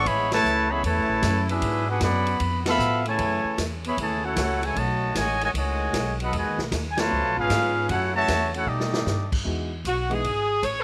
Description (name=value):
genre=jazz, big band swing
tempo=153 BPM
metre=4/4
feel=swing 66% on 8ths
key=E major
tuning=A4 = 440 Hz
part: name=clear trumpet section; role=melody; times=0.0-9.3 s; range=A3 to B5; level=-27 LUFS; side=equal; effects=none
part: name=clear trombone section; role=second line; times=0.0-9.3 s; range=A2 to F#4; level=-33 LUFS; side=equal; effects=none
part: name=upright bass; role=bass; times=0.0-10.8 s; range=G#1 to B2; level=-31 LUFS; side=equal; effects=none
part: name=swinging big-band drum kit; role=drums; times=0.1-10.8 s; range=crash cymbal, hi-hat, kick drum, ride cymbal, snare drum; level=-34 LUFS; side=equal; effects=none
part: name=clear grand piano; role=accompaniment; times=9.4-10.2 s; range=E3 to G#4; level=-35 LUFS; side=equal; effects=none
part: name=warm saxophone section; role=melody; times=9.9-10.8 s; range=F#4 to C#5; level=-26 LUFS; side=equal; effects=none
room=light reverb, small room ambience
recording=none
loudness=-24 LUFS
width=mono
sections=0.0-9.5 A section; 9.5-10.8 B section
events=band accent 0.2, 2.6, 6.9; drum fill 8.7-9.1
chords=0.1 Amaj9; 1.6 G#m7b5; 2.4 C#7alt; 3.2 F#m9; 4.8 B13; 6.3 Emaj9; 7.1 C#7b13; 7.9 F#m7; 8.7 B7alt; 9.5 Emaj9